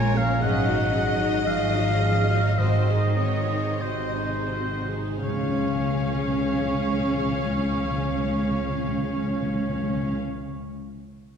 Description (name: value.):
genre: classical.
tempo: 41-58 BPM.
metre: 4/4.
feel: rubato.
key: Db major.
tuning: A4 = 438 Hz.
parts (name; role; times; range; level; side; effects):
rich studio violin section; melody; 0.0-10.2 s; Bb4 to F5; -38 LUFS; left 3 dB; none.
rich studio violin section; second line; 0.0-10.2 s; Ab4 to Eb5; -33 LUFS; left 3 dB; none.
warm oboe; second line; 0.0-10.2 s; C5 to Ab5; -29 LUFS; equal; none.
rich studio viola section; accompaniment; 0.0-10.2 s; Bb3 to Bb4; -32 LUFS; right 2 dB; none.
concert harp; arpeggios; 0.0-10.5 s; Ab2 to F5; -32 LUFS; left 5 dB; none.
rich studio cello section; bass; 0.0-10.2 s; C3 to Db4; -31 LUFS; right 1 dB; none.
rich studio double bass section; bass; 0.0-10.2 s; Ab1 to Db2; -28 LUFS; right 2 dB; none.
timpani; percussion; 2.6-10.2 s; Ab2 to Db3; -28 LUFS; left 1 dB; none.
room: wet concert hall reverb, RT60 2.1 s.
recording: heard from further back in the room.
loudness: -22 LUFS.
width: side -7 dB against mid.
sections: 0.0-5.2 A section; 5.2-10.8 B section.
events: slowing down 0.0-5.2.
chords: 0.4 Ab7sus4; 2.6 Ab7; 5.2 Db.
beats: | 0.42 1.47 2.58 3.81 | 5.23 6.62 8.03 9.43.